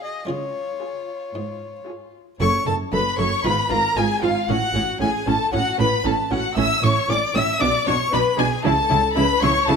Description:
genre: classical, baroque-style concerto movement with solo episodes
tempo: 115 BPM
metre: 4/4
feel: straight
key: F# minor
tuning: A4 = 440 Hz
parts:
  - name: dark violin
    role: melody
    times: 0.0-9.8 s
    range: C#5 to E6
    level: -24 LUFS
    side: left 4 dB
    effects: none
  - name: rich chamber violin section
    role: melody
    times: 0.0-9.8 s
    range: E#4 to E6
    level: -25 LUFS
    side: left 2 dB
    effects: none
  - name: warm studio violin section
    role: second line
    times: 0.0-9.8 s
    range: F4 to E5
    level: -26 LUFS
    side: left 4 dB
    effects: none
  - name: buff-stop harpsichord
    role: accompaniment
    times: 0.0-9.8 s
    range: F#2 to A4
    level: -31 LUFS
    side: right 1 dB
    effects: none
  - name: warm studio viola section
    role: accompaniment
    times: 0.0-9.8 s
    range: C#4 to A4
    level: -27 LUFS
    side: right 2 dB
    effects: none
  - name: rich symphonic cello section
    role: bass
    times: 0.3-9.8 s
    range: F#2 to C#3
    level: -26 LUFS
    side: right 4 dB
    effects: none
  - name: warm chamber double bass section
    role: bass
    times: 2.4-9.8 s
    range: F#1 to C#2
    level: -27 LUFS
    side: right 4 dB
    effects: none
room: light reverb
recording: close, detailed microphones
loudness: -18 LUFS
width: side -6 dB against mid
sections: 0.0-2.4 A section; 2.4-9.8 B section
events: none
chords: 0.3 C#; 2.4 F#m; 3.4 Fdim/Ab; 4.5 F#m/A; 6.6 A; 7.6 G#dim/B; 8.6 A/C#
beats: | 0.30 0.82 1.35 1.88 | 2.40 2.93 3.45 3.97 | 4.49 5.01 5.53 6.05 | 6.57 7.09 7.61 8.13 | 8.64 9.16 9.68

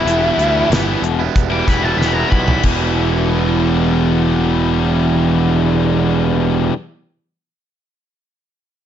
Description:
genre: classic rock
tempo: 93 BPM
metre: 4/4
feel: straight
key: E minor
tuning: A4 = 440 Hz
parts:
  - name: octave-fuzz lead guitar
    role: melody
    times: 0.0-2.6 s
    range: E4 to D6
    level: -19 LUFS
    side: left 1 dB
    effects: wah, distortion, analog delay
  - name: distorted electric guitar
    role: riff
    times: 0.0-6.7 s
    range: E2 to E4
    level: -19 LUFS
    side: right 9 dB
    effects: overdrive
  - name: tight distorted guitar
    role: riff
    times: 0.0-6.7 s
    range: E2 to E4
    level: -19 LUFS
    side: left 9 dB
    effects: distortion
  - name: fuzz picked electric bass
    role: bass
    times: 0.0-6.7 s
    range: E1 to D2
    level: -18 LUFS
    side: equal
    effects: overdrive
  - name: damped 70s drum kit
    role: drums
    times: 0.1-2.8 s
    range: crash cymbal, hi-hat, kick drum, snare drum, toms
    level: -18 LUFS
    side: equal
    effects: none
room: moderate studio reverb, RT60 0.6 s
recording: nothing above 7.6 kHz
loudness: -13 LUFS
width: side -10 dB against mid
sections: 0.0-2.6 A section; 2.6-5.2 B section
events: lead electric guitar solo 0.0-2.6; drum fill 2.0-2.6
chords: 0.0 Em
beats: | 0.05 0.70 1.34 1.99 | 2.64 3.29 3.93 4.58

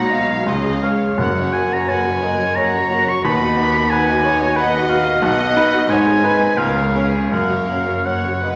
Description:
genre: classical, romantic movement for piano and orchestra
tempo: 88 BPM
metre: 3/4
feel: uneven beats, rubato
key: F# major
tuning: A4 = 439 Hz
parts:
  - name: clear baby grand piano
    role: melody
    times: 0.0-8.6 s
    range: B1 to D#5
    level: -22 LUFS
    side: equal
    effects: none
  - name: warm chamber violin section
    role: melody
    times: 0.0-8.6 s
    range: C#5 to G#5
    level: -31 LUFS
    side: equal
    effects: none
  - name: bright oboe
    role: second line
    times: 0.0-8.6 s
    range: E#5 to C#6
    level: -22 LUFS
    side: equal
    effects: none
  - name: rich chamber violin section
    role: second line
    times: 0.0-8.6 s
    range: G#4 to E#5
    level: -28 LUFS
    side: equal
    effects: none
  - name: dark studio viola section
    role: accompaniment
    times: 0.0-8.6 s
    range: G#3 to B4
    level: -27 LUFS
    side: equal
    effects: none
  - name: dark chamber double bass section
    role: bass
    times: 0.0-8.6 s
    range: F#1 to D#2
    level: -31 LUFS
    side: equal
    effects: none
  - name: warm chamber cello section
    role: bass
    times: 0.0-8.6 s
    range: C#2 to C#3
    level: -30 LUFS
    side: equal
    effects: none
  - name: timpani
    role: percussion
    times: 1.2-2.2 s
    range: F#2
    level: -29 LUFS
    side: equal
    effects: none
room: wet recital hall reverb, RT60 1.4 s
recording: tape saturation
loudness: -17 LUFS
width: mono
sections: 0.0-8.6 A section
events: none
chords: 0.5 C#; 1.2 F#; 3.2 B/D#; 5.2 B; 5.9 G#m; 6.6 C#7; 7.3 F#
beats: 0.47 | 1.19 1.89 2.56 | 3.24 3.91 4.57 | 5.22 5.89 6.58 | 7.31 8.06

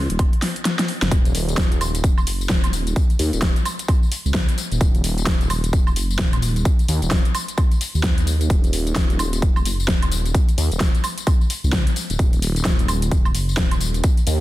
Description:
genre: bass house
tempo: 130 BPM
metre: 4/4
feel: swing 60% on 16ths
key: Eb minor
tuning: A4 = 436 Hz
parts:
  - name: phased detuned saw bass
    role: bass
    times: 0.0-14.4 s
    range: Eb1 to Eb2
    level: -22 LUFS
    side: equal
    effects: phaser, tube saturation, sidechain pumping
  - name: big-room dance drum kit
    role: drums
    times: 0.1-14.4 s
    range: hi-hat, snare drum, tambourine, woodblock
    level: -24 LUFS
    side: left 1 dB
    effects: overdrive, studio reverb
  - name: electronic kick drum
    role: drums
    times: 0.2-14.1 s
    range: none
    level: -18 LUFS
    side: equal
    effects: overdrive, studio reverb
room: little or no reverb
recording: dense, heavily limited modern master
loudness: -17 LUFS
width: side -16 dB against mid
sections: 0.0-14.4 A section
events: drum fill 0.4-1.1; kick drops out 0.7-1.1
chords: none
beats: 0.19 0.65 | 1.11 1.58 2.04 2.50 | 2.96 3.42 3.88 4.35 | 4.81 5.27 5.73 6.19 | 6.65 7.12 7.58 8.04 | 8.50 8.96 9.42 9.88 | 10.35 10.81 11.27 11.73 | 12.19 12.65 13.12 13.58 | 14.04

